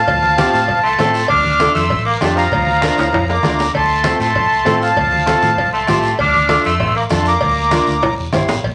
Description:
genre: latin, cumbia.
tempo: 196 BPM.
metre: 4/4.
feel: straight.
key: unclear.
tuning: A4 = 440 Hz.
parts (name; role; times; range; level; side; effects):
accordion; melody; 0.0-8.1 s; F5 to F6; -18 LUFS; equal; light tremolo tuning.
raspy tenor saxophone; second line; 0.0-8.1 s; F3 to D4; -24 LUFS; equal; none.
fingered electric bass; bass; 0.1-8.7 s; E1 to A2; -24 LUFS; equal; none.
bombo; percussion; 0.1-8.7 s; none; -29 LUFS; equal; none.
congas; percussion; 0.1-8.7 s; none; -27 LUFS; equal; none.
cowbell and timbales; percussion; 0.1-8.7 s; none; -26 LUFS; equal; none.
guiro; percussion; 0.1-8.7 s; none; -34 LUFS; equal; none.
flamenco guitar; accompaniment; 0.4-8.5 s; C4 to C5; -23 LUFS; equal; none.
room: wet club reverb, RT60 0.6 s.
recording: none.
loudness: -15 LUFS.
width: mono.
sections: 0.0-8.6 A section.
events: drum fill 3.0-3.7, 8.0-8.6.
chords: 0.0 Fadd9; 1.3 Dm; 2.5 Bb/D; 3.7 F; 6.2 Dm; 7.4 Bb/D; 8.0 C.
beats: | 0.07 0.38 0.69 0.99 | 1.30 1.60 1.91 2.22 | 2.52 2.83 3.13 3.44 | 3.75 4.05 4.36 4.66 | 4.97 5.27 5.58 5.88 | 6.19 6.50 6.80 7.11 | 7.41 7.72 8.02 8.33 | 8.64.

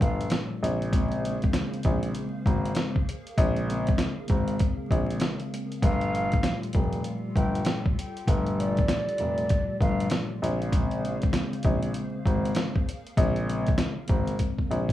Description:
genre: hip hop, boom-bap hip-hop.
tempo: 98 BPM.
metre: 4/4.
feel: swing 62% on 16ths.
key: unclear.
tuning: A4 = 436 Hz.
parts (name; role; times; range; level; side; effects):
breathy mellow silver concert flute; melody; 0.0-0.3, 5.8-10.1 s; D5 to G5; -33 LUFS; right 1 dB; high-pass filter, low-pass filter, digital delay.
mellow tine electric piano; accompaniment; 0.0-14.9 s; Bb2 to C4; -32 LUFS; equal; medium stereo tremolo, cassette tape, high-pass filter, low-pass filter.
hollow soft pad; sustained chords; 0.0-14.9 s; G3 to F5; -41 LUFS; equal; ensemble chorus, high-pass filter, low-pass filter.
dark grand piano; bass; 0.0-14.9 s; F1 to Bb1; -29 LUFS; left 1 dB; none.
trip hop sampler-style drum kit; drums; 0.0-14.9 s; hi-hat, kick drum, snare drum; -26 LUFS; equal; none.
room: little or no reverb.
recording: rough home demo mix, vinyl crackle, studio ambience.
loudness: -24 LUFS.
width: side -13 dB against mid.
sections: 0.0-14.9 A section.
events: drum fill 14.4-14.9.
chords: 0.0 Gm9; 0.6 Bbm9; 5.8 Gm9; 10.4 Bbm9.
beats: 0.32 | 0.93 1.54 2.15 2.76 | 3.38 3.99 4.60 5.21 | 5.83 6.44 7.05 7.66 | 8.27 8.89 9.50 10.11 | 10.72 11.34 11.95 12.56 | 13.17 13.78 14.40.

